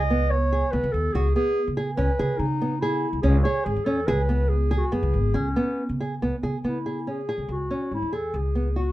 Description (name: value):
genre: contemporary instrumental, chamber music in an uneven meter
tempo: 142 BPM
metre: 5/4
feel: straight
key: C# minor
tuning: A4 = 436 Hz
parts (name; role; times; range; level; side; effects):
- dark clarinet; melody; 0.0-8.9 s; C#4 to D#5; -27 LUFS; equal; none
- upright bass; bass; 0.0-8.9 s; G#1 to C#3; -25 LUFS; equal; none
- nylon-string guitar; arpeggios; 0.1-8.9 s; B3 to G#4; -28 LUFS; right 1 dB; none
room: light reverb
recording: dark, warm production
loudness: -22 LUFS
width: side -15 dB against mid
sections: 0.0-6.2 A section; 6.2-8.9 B section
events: none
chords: 0.0 G#m/C#; 2.0 C#m; 4.1 C#5; 6.2 C#m7; 8.3 G#m7/C#